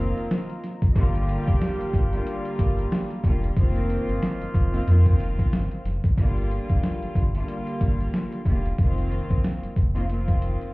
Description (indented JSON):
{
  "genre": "hip hop, boom-bap hip-hop",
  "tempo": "92 BPM",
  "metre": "4/4",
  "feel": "swing 58% on 16ths",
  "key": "G minor",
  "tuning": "A4 = 439 Hz",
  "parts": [
    { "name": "warm studio string section", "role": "accompaniment", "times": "0.0-10.7 s", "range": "D3 to F4", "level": "-30 LUFS", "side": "left 1 dB", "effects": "high-pass filter, low-pass filter" },
    { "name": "dark analog pad", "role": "sustained chords", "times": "0.0-6.1 s", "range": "F4 to Bb5", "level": "-39 LUFS", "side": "right 2 dB", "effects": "chorus, high-pass filter, low-pass filter" },
    { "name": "mellow horn section", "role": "stabs", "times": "0.0-5.8 s", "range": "F3 to G4", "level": "-35 LUFS", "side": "right 1 dB", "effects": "high-pass filter, low-pass filter, tape echo" },
    { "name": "sub bass with octave", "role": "bass", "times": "0.0-10.6 s", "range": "E1 to F2", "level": "-24 LUFS", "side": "equal", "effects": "none" },
    { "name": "boom bap sampler-style drum kit", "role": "drums", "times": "0.2-10.7 s", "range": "hi-hat, kick drum, snare drum", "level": "-22 LUFS", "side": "equal", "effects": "none" }
  ],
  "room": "little or no reverb",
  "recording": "heard muffled through a wall, club reverb, EQ",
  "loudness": "-21 LUFS",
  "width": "side -23 dB against mid",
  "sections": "0.0-6.2 A section; 6.2-10.7 B section",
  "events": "none",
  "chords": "0.0 F7sus4; 1.0 Gm7; 3.6 F7sus4; 6.2 Gm7; 8.8 F7sus4",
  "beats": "0.31 | 0.96 1.61 2.26 2.92 | 3.57 4.22 4.87 5.53 | 6.18 6.83 7.48 8.13 | 8.79 9.44 10.09"
}